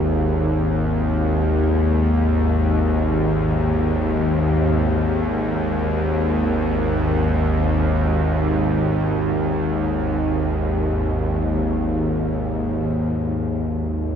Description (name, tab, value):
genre	ambient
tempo	free time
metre	none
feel	none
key	unclear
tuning	A4 = 440 Hz
part	bowed-like drone	solo	0.0-14.2 s	G#1 to D#2	-18 LUFS	equal	built-in reverb, diffuse ambient delay
room	wet plate reverb, RT60 3.0 s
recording	dreamy mix soaked in reverb, nothing above 10.7 kHz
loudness	-18 LUFS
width	side -8 dB against mid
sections	0.0-13.1 A section; 13.1-14.2 B section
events	none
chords	0.0 G#5